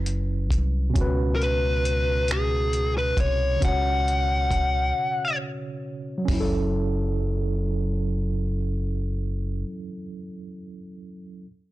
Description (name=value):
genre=slow six-eight R&B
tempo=45 BPM (dotted quarters)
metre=6/8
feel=straight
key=F# minor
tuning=A4 = 440 Hz
part: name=tine electric piano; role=accompaniment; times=0.0-11.5 s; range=B2 to C#5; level=-30 LUFS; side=right 2 dB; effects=medium stereo tremolo
part: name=deep dub fingered electric bass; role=bass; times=0.0-9.6 s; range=F#1 to C#2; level=-25 LUFS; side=equal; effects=tube saturation
part: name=dusty soul sampler-style drum kit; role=drums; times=0.1-6.5 s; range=finger snaps, hi-hat, kick drum, toms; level=-26 LUFS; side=equal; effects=soft clipping on snare
part: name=fuzz lead guitar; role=melody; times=1.4-5.4 s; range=G#4 to F#5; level=-24 LUFS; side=left 2 dB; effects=distortion, slapback echo
room=little or no reverb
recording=blown-out, overdriven recording, overdrive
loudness=-22 LUFS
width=side -16 dB against mid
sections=0.0-6.3 A section; 6.3-8.9 B section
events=break 4.9-6.3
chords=0.0 F#7(no3); 0.9 C#7sus4; 6.3 F#m7